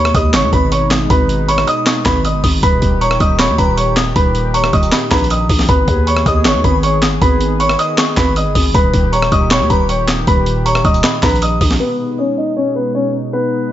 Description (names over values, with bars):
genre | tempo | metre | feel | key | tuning
hip hop, trap | 157 BPM | 4/4 | half-time | G# harmonic minor | A4 = 440 Hz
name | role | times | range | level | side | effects
dark concert grand piano | melody | 0.0-13.7 s | B3 to D#6 | -16 LUFS | equal | low-pass filter, digital delay
delicate synth tine bell | second line | 0.0-11.8 s | A#5 to D#6 | -23 LUFS | left 3 dB | chorus, digital delay
warm analog pad | sustained chords | 0.0-13.7 s | A#2 to G#4 | -22 LUFS | equal | chorus, low-pass filter
growling 808-style bass | bass | 0.0-11.8 s | D#1 to D#2 | -17 LUFS | equal | none
breakbeat sampler-style drum kit | drums | 0.1-11.8 s | handclaps, hi-hat, kick drum, rim click, snare drum | -15 LUFS | equal | none
room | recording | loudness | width
light reverb | nothing above 7.8 kHz | -11 LUFS | side -12 dB against mid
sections
0.0-11.8 A section; 11.8-13.7 B section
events
filter sweep 11.8-13.7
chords
0.0 G#m; 2.6 D#; 5.7 G#m; 8.7 D#; 11.8 G#m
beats
0.34 0.72 | 1.10 1.48 1.86 2.25 | 2.63 3.01 3.39 3.78 | 4.16 4.54 4.92 5.30 | 5.69 6.07 6.45 6.83 | 7.22 7.60 7.98 8.36 | 8.74 9.13 9.51 9.89 | 10.27 10.65 11.04 11.42 | 11.80 12.18 12.57 12.95 | 13.33 13.71